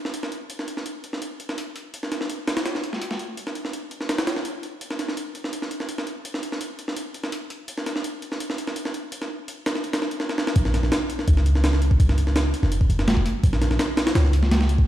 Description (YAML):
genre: drum and bass, jungle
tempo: 167 BPM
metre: 4/4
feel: straight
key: Bb minor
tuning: A4 = 438 Hz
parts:
  - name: jungle sampler-style drum kit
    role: drums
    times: 0.1-14.9 s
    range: hi-hat, kick drum, snare drum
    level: -24 LUFS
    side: equal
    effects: high-pass filter on hats, high-pass filter on kick, high-pass filter on snare, high-pass filter on room
  - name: warm 808-style bass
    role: bass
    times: 10.6-14.9 s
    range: F1 to Db2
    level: -20 LUFS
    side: equal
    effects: none
room: light reverb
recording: played on a big sound system in a bare room, stone room reverb, vinyl crackle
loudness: -22 LUFS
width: side -13 dB against mid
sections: 0.0-10.6 A section; 10.6-14.9 B section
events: drum fill 10.2-10.6; drop 10.6-14.9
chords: none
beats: 0.14 | 0.50 0.86 1.22 1.58 | 1.94 2.29 2.65 3.01 | 3.37 3.73 4.09 4.45 | 4.81 5.17 5.53 5.89 | 6.25 6.61 6.97 7.33 | 7.68 8.04 8.40 8.76 | 9.12 9.48 9.84 10.20 | 10.56 10.92 11.28 11.64 | 12.00 12.36 12.71 13.07 | 13.43 13.79 14.15 14.51